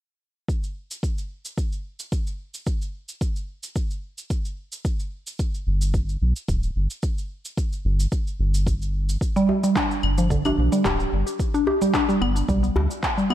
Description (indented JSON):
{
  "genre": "organic downtempo",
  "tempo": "110 BPM",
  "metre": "4/4",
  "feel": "swing 54% on 16ths",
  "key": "G major",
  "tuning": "A4 = 438 Hz",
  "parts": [
    { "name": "electronic kick drum", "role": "drums", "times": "0.5-13.1 s", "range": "none", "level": "-26 LUFS", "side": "equal", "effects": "overdrive" },
    { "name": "electronic shaker, handclaps and claves", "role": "drums", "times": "0.5-13.3 s", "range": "none", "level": "-31 LUFS", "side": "equal", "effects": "none" },
    { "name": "round analog bass", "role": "bass", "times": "5.7-12.9 s", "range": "D1 to D2", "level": "-22 LUFS", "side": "equal", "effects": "sidechain pumping" },
    { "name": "mallet-like synth pluck", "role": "arpeggios", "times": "9.4-13.3 s", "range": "D3 to G4", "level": "-21 LUFS", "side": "equal", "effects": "chorus, ping-pong delay" },
    { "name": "djembe", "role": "percussion", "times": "9.5-13.3 s", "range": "none", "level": "-30 LUFS", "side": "left 2 dB", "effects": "none" }
  ],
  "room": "light reverb",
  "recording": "none",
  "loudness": "-22 LUFS",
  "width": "side -12 dB against mid",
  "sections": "0.5-9.2 A section; 9.2-13.3 B section",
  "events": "none",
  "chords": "0.5 N.C.; 9.2 G5",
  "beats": "| 0.49 1.03 1.58 2.12 | 2.67 3.21 3.76 4.31 | 4.85 5.40 5.94 6.49 | 7.03 7.58 8.12 8.67 | 9.21 9.76 10.31 10.85 | 11.40 11.94 12.49 13.03"
}